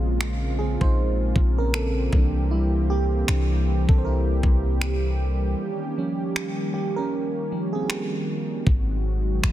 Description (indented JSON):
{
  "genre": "contemporary R&B",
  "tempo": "78 BPM",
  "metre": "4/4",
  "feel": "swing 58% on 16ths",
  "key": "unclear",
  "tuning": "A4 = 442 Hz",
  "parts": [
    { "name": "mellow FM electric piano", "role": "accompaniment", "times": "0.0-8.7 s", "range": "Db3 to C5", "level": "-28 LUFS", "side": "right 2 dB", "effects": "chorus" },
    { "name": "warm analog pad", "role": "sustained chords", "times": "0.0-9.5 s", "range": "Db3 to G4", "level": "-29 LUFS", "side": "equal", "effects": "chorus" },
    { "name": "clean 808-style bass", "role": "bass", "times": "0.0-9.5 s", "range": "Ab1 to C2", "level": "-23 LUFS", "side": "equal", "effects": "none" },
    { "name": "smooth R&B drum kit", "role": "drums", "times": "0.2-9.5 s", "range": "finger snaps, kick drum", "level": "-24 LUFS", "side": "equal", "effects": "soft clipping on snare" }
  ],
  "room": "little or no reverb",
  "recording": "dense, heavily limited modern master",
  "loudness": "-21 LUFS",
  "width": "side -13 dB against mid",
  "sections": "0.0-9.5 A section",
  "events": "FM electric piano solo 0.0-9.5; break 5.6-8.7",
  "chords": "0.0 Bbm9; 2.1 C7; 5.6 Eb7; 8.7 Ab7",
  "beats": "0.20 0.97 1.74 | 2.51 3.28 4.05 4.82 | 5.59 6.36 7.13 7.90 | 8.67 9.44"
}